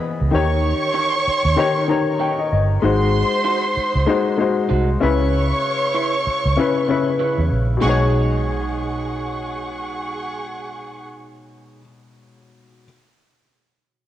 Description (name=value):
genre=soul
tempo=96 BPM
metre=4/4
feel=swing 58% on 16ths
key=B major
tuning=A4 = 439 Hz
part: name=warm baby grand piano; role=accompaniment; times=0.0-12.9 s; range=B2 to A#5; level=-20 LUFS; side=left 4 dB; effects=cassette tape
part: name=vintage muted fingered electric bass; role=bass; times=0.2-11.8 s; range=G1 to E2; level=-20 LUFS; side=right 1 dB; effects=none
part: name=warm studio violin section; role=second line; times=0.3-11.1 s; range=G#4 to C#6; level=-23 LUFS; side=right 1 dB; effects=cassette tape
part: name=electric guitar through a small old amp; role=riff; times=0.9-11.8 s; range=D#4 to C#5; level=-29 LUFS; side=right 8 dB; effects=cassette tape
room=moderate lush hall reverb, RT60 2.5 s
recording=home recording on cassette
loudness=-17 LUFS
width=side -12 dB against mid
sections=0.0-7.8 A section; 7.8-10.3 B section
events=grand piano fill 1.6-2.8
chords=0.3 D#7; 2.8 G#7; 5.0 C#m7; 7.8 B69